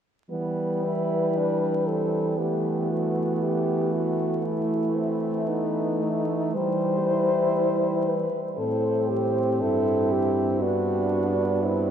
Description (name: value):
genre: classical, lyrical piece for horn quartet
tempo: 59 BPM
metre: 3/4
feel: rubato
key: E minor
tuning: A4 = 438 Hz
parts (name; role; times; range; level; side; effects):
- warm French horn; melody; 0.3-11.9 s; D#4 to C5; -26 LUFS; left 4 dB; none
- warm French horn; second line; 0.3-11.9 s; G3 to E4; -30 LUFS; right 8 dB; none
- mellow French horn; accompaniment; 0.3-11.9 s; G3 to C4; -29 LUFS; equal; none
- dark French horn; bass; 0.3-11.9 s; G2 to E3; -29 LUFS; right 3 dB; none
room: wet cathedral reverb, RT60 6.6 s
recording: vinyl crackle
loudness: -22 LUFS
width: side -8 dB against mid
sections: 0.3-11.9 A section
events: none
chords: 0.3 Em; 2.4 Emadd11; 6.6 Em; 8.6 Am7; 9.6 Em/G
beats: | 0.30 1.37 2.39 | 3.42 4.45 5.47 | 6.55 7.58 8.59 | 9.62 10.62 11.65